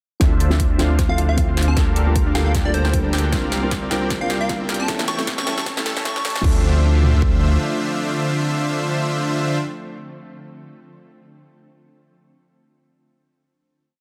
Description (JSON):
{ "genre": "future bass", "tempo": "154 BPM", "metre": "4/4", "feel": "swing 55% on 16ths, half-time", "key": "D minor", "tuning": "A4 = 442 Hz", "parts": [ { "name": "felt-muted upright piano", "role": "accompaniment", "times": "0.2-9.6 s", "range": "F3 to E5", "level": "-30 LUFS", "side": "equal", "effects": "sidechain pumping, tape echo" }, { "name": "shimmering ambient pad", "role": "sustained chords", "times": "2.0-9.6 s", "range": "C3 to G4", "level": "-36 LUFS", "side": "equal", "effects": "none" }, { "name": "unison pluck", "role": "arpeggios", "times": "0.2-6.6 s", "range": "C4 to A4", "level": "-34 LUFS", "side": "equal", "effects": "none" }, { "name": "supersaw chords", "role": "riff", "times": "0.2-9.6 s", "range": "D3 to A5", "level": "-26 LUFS", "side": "equal", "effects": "sidechain pumping, low-pass filter, tape echo" }, { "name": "saturated sub bass", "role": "bass", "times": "0.2-7.6 s", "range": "A1 to D2", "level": "-22 LUFS", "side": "equal", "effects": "sidechain pumping" }, { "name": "big-room dance drum kit", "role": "drums", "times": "0.2-7.3 s", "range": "kick drum, toms", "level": "-23 LUFS", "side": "equal", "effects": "none" }, { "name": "big-room dance drum kit", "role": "drums", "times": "0.2-6.5 s", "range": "crash cymbal, hi-hat, snare drum", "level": "-29 LUFS", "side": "equal", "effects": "high-pass filter on snare, high-pass filter on hats, high-pass filter on cymbals" }, { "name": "riser", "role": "sound effects", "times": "3.5-6.4 s", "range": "none", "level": "-39 LUFS", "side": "equal", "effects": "none" }, { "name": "plucky unison lead", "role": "melody", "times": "1.1-6.4 s", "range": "C5 to C#6", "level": "-30 LUFS", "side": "equal", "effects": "phaser, sidechain pumping, delay" } ], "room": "light reverb, digital ambience", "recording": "dense, heavily limited modern master, high-pass filter", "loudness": "-19 LUFS", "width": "mono", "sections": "0.2-6.4 build; 6.4-9.6 final chord", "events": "build-up 0.2-6.4; drum fill 0.2-6.4; filter sweep on supersaw synth 0.2-6.4; filter sweep 0.2-6.4", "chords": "0.2 Dm7; 1.8 Gm9/D; 3.3 C9sus4; 4.9 A7; 6.4 Dm7" }